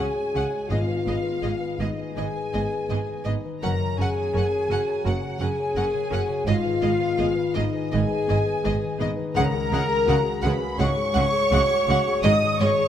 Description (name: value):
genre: cinematic, emotional film score for orchestra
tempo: 83 BPM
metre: 4/4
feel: rubato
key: G# dorian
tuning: A4 = 440 Hz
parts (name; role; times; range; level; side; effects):
- rich studio violin section; melody; 0.0-12.7 s; D#5 to F#5; -31 LUFS; left 1 dB; none
- bright large flute ensemble; second line; 0.0-12.9 s; D#5 to D#6; -33 LUFS; right 1 dB; none
- warm studio violin section; second line; 0.0-12.9 s; D#5 to D#6; -33 LUFS; equal; none
- dark concert grand piano; accompaniment; 0.0-12.9 s; C#2 to C#5; -32 LUFS; left 1 dB; none
- warm studio viola section; accompaniment; 0.0-12.7 s; G#3 to A#4; -34 LUFS; right 2 dB; none
- mellow French horn section; sustained chords; 0.0-12.9 s; D#4 to D#5; -25 LUFS; left 2 dB; none
- concert harp; arpeggios; 0.0-12.9 s; F#2 to A#5; -34 LUFS; left 8 dB; none
- rich studio cello section; bass; 0.0-12.7 s; F#2 to C#3; -28 LUFS; right 3 dB; none
- warm studio double bass section; bass; 0.0-12.7 s; F#1 to C#2; -29 LUFS; right 3 dB; none
- timpani; percussion; 0.7-1.8 s; G#2; -32 LUFS; equal; none
room: moderate scoring stage reverb, RT60 2.1 s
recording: none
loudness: -21 LUFS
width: side -10 dB against mid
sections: 0.0-12.9 A section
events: none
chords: 0.0 C#sus4; 0.7 G#m; 3.6 F#; 6.5 G#m; 9.4 C#sus4; 12.2 G#5